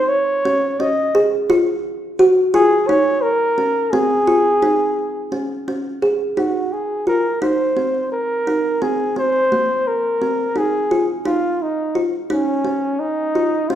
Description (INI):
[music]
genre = contemporary instrumental, contemporary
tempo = 172 BPM (eighths)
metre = 7/8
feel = straight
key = unclear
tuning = A4 = 440 Hz
[part]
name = breathy flugelhorn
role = melody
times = 0.0-13.8 s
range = Db4 to Eb5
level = -18 LUFS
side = equal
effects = none
[part]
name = kalimba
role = arpeggios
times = 0.0-13.8 s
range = Bb3 to Ab4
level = -19 LUFS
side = equal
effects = none
[sound]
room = wet recital hall reverb, RT60 1.3 s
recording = recorded in a church or concert hall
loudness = -16 LUFS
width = side -10 dB against mid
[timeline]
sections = 0.0-6.4 A section; 6.4-13.8 B section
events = none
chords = 0.0 Dbsus2; 1.5 Bbm; 3.9 Dbmaj7; 6.4 Bb9sus4; 11.3 Db